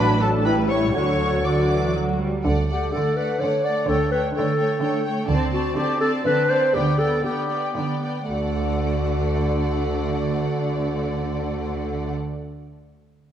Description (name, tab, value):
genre	quick classical-period movement for symphony orchestra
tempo	111-128 BPM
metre	3/4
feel	rubato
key	D major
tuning	A4 = 439 Hz
part	rich studio violin section	melody	0.0-12.1 s	F#5 to D6	-32 LUFS	left 2 dB	none
part	hollow large flute ensemble	second line	0.0-2.2 s	F#5 to A5	-32 LUFS	left 1 dB	none
part	rich studio violin section	second line	0.0-12.1 s	A4 to D5	-31 LUFS	equal	none
part	warm clarinet	second line	0.0-12.1 s	D4 to D5	-25 LUFS	left 1 dB	none
part	warm oboe	second line	0.0-1.9 s	A4 to D5	-32 LUFS	equal	none
part	rich studio viola section	accompaniment	0.0-12.1 s	F#3 to F#4	-29 LUFS	equal	none
part	dark French horn section	sustained chords	0.0-2.2 s	F#3 to F#4	-27 LUFS	left 3 dB	none
part	clear trumpet section	stabs	0.0-1.9 s	A4 to D5	-29 LUFS	right 1 dB	none
part	rich studio cello section	bass	0.0-12.1 s	A2 to G3	-26 LUFS	right 2 dB	none
part	rich studio double bass section	bass	0.0-12.1 s	A1 to D2	-26 LUFS	right 2 dB	none
room	moderate scoring stage reverb, RT60 1.8 s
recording	worn, warbling old tape, cassette tape, warbly pitch drift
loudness	-20 LUFS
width	side -10 dB against mid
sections	0.0-2.4 A section; 2.4-8.3 B section; 8.3-11.4 C section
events	slowing down 4.6-8.3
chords	0.4 A7; 0.9 D; 5.3 D5; 6.7 G/D; 8.3 D